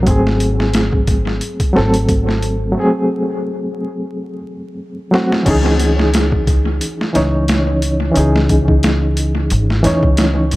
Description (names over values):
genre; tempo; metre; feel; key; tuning
trip hop; 89 BPM; 4/4; swing 56% on 16ths; C# harmonic minor; A4 = 441 Hz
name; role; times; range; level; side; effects
reed electric piano; accompaniment; 0.0-10.6 s; E3 to C#5; -17 LUFS; equal; fast tremolo, analog delay
upright bass; bass; 0.0-10.6 s; G#1 to F#2; -17 LUFS; equal; none
boom bap sampler-style drum kit; drums; 0.1-10.6 s; crash cymbal, hi-hat, kick drum, snare drum; -18 LUFS; equal; overdrive, small room reverb, analog delay
room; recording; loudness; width
light reverb; echo-heavy mix, vinyl crackle; -13 LUFS; side -18 dB against mid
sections
0.0-5.5 A section; 5.5-10.6 B section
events
break 2.8-5.5; drum fill 5.1-5.5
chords
0.1 G#7b9; 5.5 C#madd9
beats
| 0.07 0.74 1.42 2.09 | 2.76 3.44 4.11 4.79 | 5.46 6.13 6.81 7.48 | 8.16 8.83 9.51 10.18